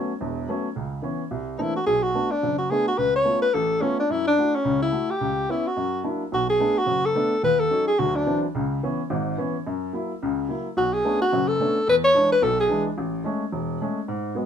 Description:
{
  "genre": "jazz",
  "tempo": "216 BPM",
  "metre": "4/4",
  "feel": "swing 59% on 8ths",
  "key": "F# minor",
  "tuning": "A4 = 440 Hz",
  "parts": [
    { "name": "warm upright piano", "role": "accompaniment", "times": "0.0-14.5 s", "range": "E1 to F#4", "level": "-26 LUFS", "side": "equal", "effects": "none" },
    { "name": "breathy alto saxophone", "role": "melody", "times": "1.6-8.4, 10.8-12.9 s", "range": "C#4 to C#5", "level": "-20 LUFS", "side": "left 1 dB", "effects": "none" }
  ],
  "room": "moderate studio reverb, RT60 0.6 s",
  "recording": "minimal, uncompressed stereo recording",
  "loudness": "-21 LUFS",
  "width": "side -8 dB against mid",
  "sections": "0.0-6.3 A section; 6.3-14.5 B section",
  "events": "none",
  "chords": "0.0 A69; 0.8 C#m7; 1.3 C13; 1.9 Bm7; 3.0 C#aug7; 4.1 F#m7; 5.2 C#m7b5; 5.8 F#7b13; 6.3 Bm7; 7.4 D#m7b5; 8.0 D9; 8.5 C#m7; 9.6 F#7; 10.8 Bm9; 11.9 E7; 13.0 Amaj7"
}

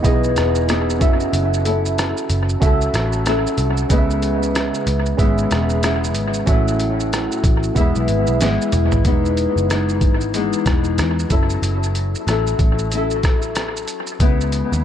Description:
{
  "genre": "indie pop, bedroom pop",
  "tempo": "93 BPM",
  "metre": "4/4",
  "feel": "swing 60% on 16ths",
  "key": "E major",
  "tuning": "A4 = 439 Hz",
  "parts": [
    { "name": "flamenco guitar", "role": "accompaniment", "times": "0.0-14.8 s", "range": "A2 to A4", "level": "-21 LUFS", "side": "left 4 dB", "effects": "wide subtle chorus, warbly pitch drift, dub echo" },
    { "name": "tine electric piano", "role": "accompaniment", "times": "0.0-9.1 s", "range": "B3 to E5", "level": "-23 LUFS", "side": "right 5 dB", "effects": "cassette tape, dub echo" },
    { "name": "vintage muted picked electric bass", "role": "bass", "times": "0.0-14.8 s", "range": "E1 to E2", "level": "-21 LUFS", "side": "equal", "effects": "none" },
    { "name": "lo-fi sampler-style drum kit", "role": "drums", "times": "0.0-14.8 s", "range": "hi-hat, kick drum, rim click, shaker, snare drum, toms", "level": "-20 LUFS", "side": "equal", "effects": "dub echo" }
  ],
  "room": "light reverb",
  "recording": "echo-heavy mix",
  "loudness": "-16 LUFS",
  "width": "side -10 dB against mid",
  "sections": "0.0-9.1 A section; 9.1-14.8 B section",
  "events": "drum fill 8.4-9.1",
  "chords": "0.0 Emaj7; 1.0 F#m7; 3.9 C#m7; 6.5 A6; 7.8 E; 9.1 Emaj7; 11.3 F#m7; 14.2 C#m7"
}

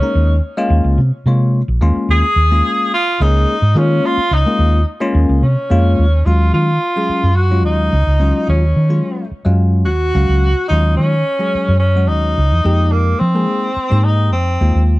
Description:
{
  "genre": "electric jazz fusion",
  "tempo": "108 BPM",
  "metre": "4/4",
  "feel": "straight",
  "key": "Eb dorian",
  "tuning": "A4 = 439 Hz",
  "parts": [
    { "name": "clear tenor saxophone", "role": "melody", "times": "0.0-14.9 s", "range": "Bb3 to Ab4", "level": "-18 LUFS", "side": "equal", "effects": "none" },
    { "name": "bell-like tine electric piano", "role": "accompaniment", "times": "0.0-14.9 s", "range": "Gb3 to F5", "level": "-19 LUFS", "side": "left 2 dB", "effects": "phaser" },
    { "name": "hollow-body short-scale fingered electric bass", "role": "bass", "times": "0.2-15.0 s", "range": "Bb1 to F3", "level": "-13 LUFS", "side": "equal", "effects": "none" }
  ],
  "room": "light reverb",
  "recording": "dark, warm production, nothing above 10.5 kHz",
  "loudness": "-12 LUFS",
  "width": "side -19 dB against mid",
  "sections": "0.0-6.3 A section; 6.3-15.0 B section",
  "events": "none",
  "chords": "0.0 Eb9sus4; 6.3 Ebm11; 12.7 Fm11"
}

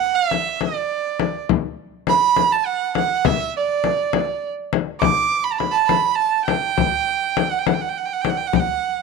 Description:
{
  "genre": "Persian modal ensemble",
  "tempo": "68 BPM (dotted quarters)",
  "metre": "6/8",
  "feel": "straight",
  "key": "D dastgah mahur",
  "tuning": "A4 = 440 Hz",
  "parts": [
    { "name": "warm violin", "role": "melody", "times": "0.0-9.0 s", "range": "D5 to D6", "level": "-19 LUFS", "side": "right 9 dB", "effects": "none" },
    { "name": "frame drum", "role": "percussion", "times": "0.3-8.7 s", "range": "none", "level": "-21 LUFS", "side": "left 13 dB", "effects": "none" }
  ],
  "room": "light reverb",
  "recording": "1960s-style stereo with parts hard left and right",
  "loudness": "-18 LUFS",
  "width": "side -4 dB against mid",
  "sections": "0.0-9.0 A section",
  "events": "none",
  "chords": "none"
}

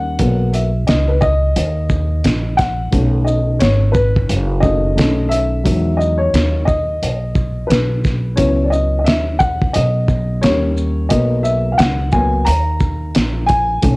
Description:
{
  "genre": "hip hop, jazz-hop",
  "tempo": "88 BPM",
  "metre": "4/4",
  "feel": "swing 62% on 16ths",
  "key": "unclear",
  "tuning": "A4 = 437 Hz",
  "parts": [
    { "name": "dark upright piano", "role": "accompaniment", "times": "0.0-14.0 s", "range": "D#3 to A#5", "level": "-18 LUFS", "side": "left 1 dB", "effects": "cassette tape" },
    { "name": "upright bass", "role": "bass", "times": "0.0-14.0 s", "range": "F#1 to E2", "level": "-17 LUFS", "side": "equal", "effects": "none" },
    { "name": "cloth-damped thuddy drum kit", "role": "drums", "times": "0.2-14.0 s", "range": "hi-hat, kick drum, shaker, snare drum", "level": "-18 LUFS", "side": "equal", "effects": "cassette tape" }
  ],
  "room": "little or no reverb",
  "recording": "home recording on cassette",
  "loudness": "-13 LUFS",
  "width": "side -24 dB against mid",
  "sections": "0.0-14.0 A section",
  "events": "upright piano solo 0.0-14.0",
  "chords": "0.2 Bmaj9; 2.9 B9; 5.7 Emaj9; 8.4 C#m11; 10.4 D#7; 11.1 Bmaj13"
}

